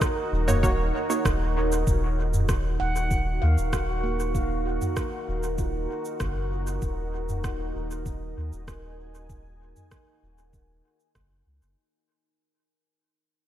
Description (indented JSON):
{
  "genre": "ambient dub",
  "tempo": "97 BPM",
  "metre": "4/4",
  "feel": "straight",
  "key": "Eb minor",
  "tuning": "A4 = 440 Hz",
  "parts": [
    { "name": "deep dark ambient pad", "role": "sustained chords", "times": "0.0-11.8 s", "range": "Eb4 to Ab5", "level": "-32 LUFS", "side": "right 1 dB", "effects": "chorus, built-in reverb, vintage 12-bit sampler grit" },
    { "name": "electronic kick drum", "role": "drums", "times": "0.0-11.3 s", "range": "none", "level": "-28 LUFS", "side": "equal", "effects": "none" },
    { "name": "organic electronic drum kit", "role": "drums", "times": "0.0-11.7 s", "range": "rim click, shaker, toms", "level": "-32 LUFS", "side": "equal", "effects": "dub echo" },
    { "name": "bubbling stepped-filter texture", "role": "texture", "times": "0.0-11.8 s", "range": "Gb4", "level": "-39 LUFS", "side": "right 2 dB", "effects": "chorus, built-in reverb" },
    { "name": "soft dub sub bass", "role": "bass", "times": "0.3-11.8 s", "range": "Eb1 to Eb2", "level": "-27 LUFS", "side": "equal", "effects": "none" },
    { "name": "filtered dub chord stab", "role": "stabs", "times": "0.5-1.3 s", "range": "Bb3 to Db5", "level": "-30 LUFS", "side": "right 3 dB", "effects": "chorus, dub echo" },
    { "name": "handpan", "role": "arpeggios", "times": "2.8-8.4 s", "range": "Bb3 to Gb5", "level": "-34 LUFS", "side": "equal", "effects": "low-pass filter, tape echo" }
  ],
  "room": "light reverb",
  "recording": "none",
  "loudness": "-24 LUFS",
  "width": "side -12 dB against mid",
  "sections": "0.0-1.9 A section; 1.9-11.8 B section",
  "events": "fade-out 1.9-11.8",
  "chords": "0.0 Ebm7; 1.9 Ebm"
}